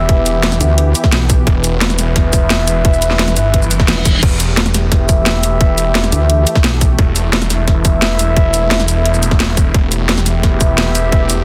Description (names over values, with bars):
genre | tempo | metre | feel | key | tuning
dark technical drum and bass | 174 BPM | 4/4 | straight | E minor | A4 = 440 Hz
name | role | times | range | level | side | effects
sweeping resonant pad | sustained chords | 0.0-11.4 s | E3 to B4 | -25 LUFS | equal | chorus, sidechain pumping
mellow brass ensemble | stabs | 0.0-11.4 s | E4 to E5 | -22 LUFS | equal | delay
snarling distorted saw bass | bass | 0.0-11.4 s | E1 to G1 | -18 LUFS | equal | distortion, tube saturation
drum and bass drum kit | drums | 0.1-11.4 s | crash cymbal, hi-hat, shaker, snare drum | -19 LUFS | equal | overdrive, small room reverb
electronic kick drum | drums | 0.1-11.2 s | none | -15 LUFS | equal | overdrive, small room reverb
metallic wobble bass | bass | 0.6-1.5, 3.9-7.0 s | E1 to D2 | -16 LUFS | equal | chorus
reverse cymbal | sound effects | 3.7-4.2 s | none | -23 LUFS | equal | none
room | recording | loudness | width
light reverb | dense, heavily limited modern master | -13 LUFS | mono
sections
0.0-11.4 A section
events
reverse cymbal 3.7-4.2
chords
0.0 Em